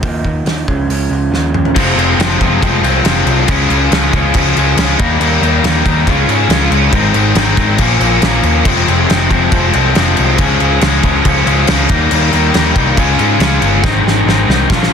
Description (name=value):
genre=quiet-loud alternative rock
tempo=139 BPM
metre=4/4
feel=straight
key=F minor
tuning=A4 = 439 Hz
part: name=electric guitar through a small old amp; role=arpeggios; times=0.0-1.8 s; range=Db3 to Eb4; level=-17 LUFS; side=right 5 dB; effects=none
part: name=picked electric bass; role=bass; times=0.0-14.9 s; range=F1 to Ab2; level=-16 LUFS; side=equal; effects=none
part: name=loose indie drum kit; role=drums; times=0.0-14.9 s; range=crash cymbal, hi-hat, kick drum, snare drum, toms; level=-15 LUFS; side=equal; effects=none
part: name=crunchy overdriven guitar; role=riff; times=1.7-14.9 s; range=F2 to F4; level=-15 LUFS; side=left 15 dB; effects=none
part: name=distorted electric guitar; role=riff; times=1.8-14.9 s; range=F2 to F4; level=-16 LUFS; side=right 13 dB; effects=distortion
room=little or no reverb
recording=dense, heavily limited modern master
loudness=-9 LUFS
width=side -7 dB against mid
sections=0.0-1.8 A section; 1.8-14.9 B section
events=drum fill 1.3-1.8, 13.8-14.9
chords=0.0 Ebsus2; 0.7 Db; 1.8 Fm; 3.5 Db; 5.0 Eb; 6.1 Db; 6.9 Ab; 7.8 Bbm; 8.7 Fm; 10.4 Db; 11.9 Eb; 13.0 Db; 13.8 Ab